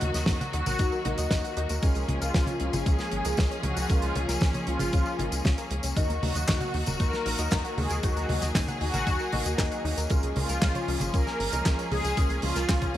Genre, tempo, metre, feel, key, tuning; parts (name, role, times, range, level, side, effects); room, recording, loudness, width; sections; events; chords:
italo disco; 116 BPM; 4/4; straight; Eb minor; A4 = 439 Hz
mellow synth brass; melody; 0.0-13.0 s; F4 to Bb4; -32 LUFS; equal; chorus, digital delay
rich studio string section; sustained chords; 0.0-13.0 s; Eb3 to Ab4; -34 LUFS; left 1 dB
soft round pluck; arpeggios; 0.0-13.0 s; Db4 to Ab5; -38 LUFS; left 4 dB; chorus, digital delay
warm baby grand piano; stabs; 0.0-13.0 s; Ab3 to Eb5; -37 LUFS; right 1 dB; analog chorus
tight sequencer bass; bass; 0.0-13.0 s; Eb1 to Eb2; -31 LUFS; equal
damped 70s drum kit; drums; 0.0-13.0 s; handclaps, hi-hat, snare drum, tambourine, toms; -31 LUFS; equal
electronic kick drum; drums; 0.3-12.9 s; -27 LUFS; equal
light reverb, small room ambience; bright 1980s-style digital production, vinyl crackle; -24 LUFS; side -12 dB against mid
0.0-13.0 A section
0.0 Ebm; 1.8 Db6; 6.0 Ebm; 10.1 Db6